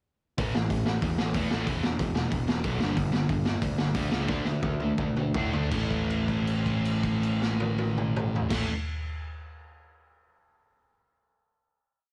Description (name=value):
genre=punk rock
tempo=158-187 BPM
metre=4/4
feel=straight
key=unclear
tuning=A4 = 440 Hz
part: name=sludgy distorted guitar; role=riff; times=0.4-8.7 s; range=E2 to D4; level=-32 LUFS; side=equal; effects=overdrive, cassette tape
part: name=fuzz picked electric bass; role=bass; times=0.4-8.7 s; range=E1 to A2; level=-33 LUFS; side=equal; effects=overdrive
part: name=raw garage drum kit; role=drums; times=0.4-8.6 s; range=crash cymbal, hi-hat, kick drum, snare drum, toms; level=-32 LUFS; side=equal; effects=none
room=little or no reverb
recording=home recording on cassette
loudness=-28 LUFS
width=mono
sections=0.4-5.7 verse; 5.7-8.7 final chord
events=slowing down 3.0-5.7; drum fill 4.3-5.7; held note 5.7-8.5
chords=0.4 A5; 1.7 E5; 2.8 G5; 4.3 D5; 5.7 A5